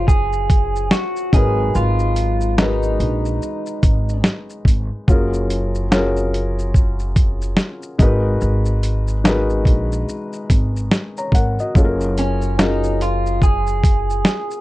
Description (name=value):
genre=lo-fi hip hop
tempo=72 BPM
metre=4/4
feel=swing 59% on 16ths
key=G# dorian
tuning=A4 = 438 Hz
part: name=electric guitar through a small old amp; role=melody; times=0.0-4.2, 12.2-14.6 s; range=C#4 to G#4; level=-23 LUFS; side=right 1 dB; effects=low-pass filter, tape echo
part: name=felt-muted upright piano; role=accompaniment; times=0.0-14.6 s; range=F#3 to A#5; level=-23 LUFS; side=left 2 dB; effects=cassette tape, low-pass filter
part: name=upright bass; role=bass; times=0.0-14.2 s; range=F#1 to A#1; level=-20 LUFS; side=equal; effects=none
part: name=dusty soul sampler-style drum kit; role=drums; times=0.1-14.6 s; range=hi-hat, kick drum, shaker, snare drum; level=-15 LUFS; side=equal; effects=none
room=little or no reverb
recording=dark, warm production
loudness=-16 LUFS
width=side -17 dB against mid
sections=0.0-14.6 A section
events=none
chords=0.0 F#maj7; 1.3 G#m9; 5.1 F#maj7; 8.0 G#m9; 11.7 F#maj7